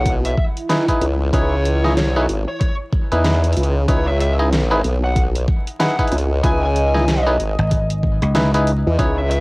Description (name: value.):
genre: glitch hop.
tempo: 94 BPM.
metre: 4/4.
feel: swing 60% on 16ths.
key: C# minor.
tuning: A4 = 441 Hz.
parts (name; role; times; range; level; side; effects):
fuzz lead guitar; melody; 0.0-9.4 s; C#5 to G#5; -27 LUFS; left 1 dB; distortion, vintage 12-bit sampler grit, cassette tape, tape echo.
formant-sweep wobble bass; bass; 0.0-9.4 s; G#1 to E2; -17 LUFS; equal; chorus.
deep dark ambient pad; texture; 0.0-9.4 s; E4 to D#5; -27 LUFS; equal; chorus, built-in reverb, sidechain pumping, cassette tape.
dubstep drum kit; drums; 0.1-9.4 s; hi-hat, rim click, snare drum; -23 LUFS; equal; overdrive, cassette tape.
electronic kick drum; drums; 0.1-9.1 s; none; -19 LUFS; equal; overdrive, cassette tape.
bright clav; stabs; 0.7-9.2 s; D#4 to D#5; -22 LUFS; equal; vintage 12-bit sampler grit, sidechain pumping, cassette tape, tape echo.
dry thumbed slap bass; bass; 7.6-8.8 s; G#1 to C#2; -18 LUFS; equal; none.
room: light reverb.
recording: home recording on cassette, vinyl crackle.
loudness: -15 LUFS.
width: side -25 dB against mid.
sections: 0.0-9.4 A section.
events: none.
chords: 0.0 C#m9.